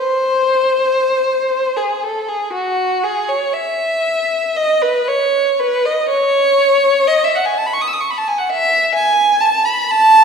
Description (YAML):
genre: classical, free, expressive piece for unaccompanied violin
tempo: 57-65 BPM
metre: 3/4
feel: rubato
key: C# minor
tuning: A4 = 440 Hz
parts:
  - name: rich violin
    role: solo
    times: 0.0-10.2 s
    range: F#4 to E6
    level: -13 LUFS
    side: equal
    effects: none
room: wet scoring stage reverb, RT60 1.6 s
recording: heard from further back in the room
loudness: -13 LUFS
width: side -6 dB against mid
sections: 0.0-10.2 A section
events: none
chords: none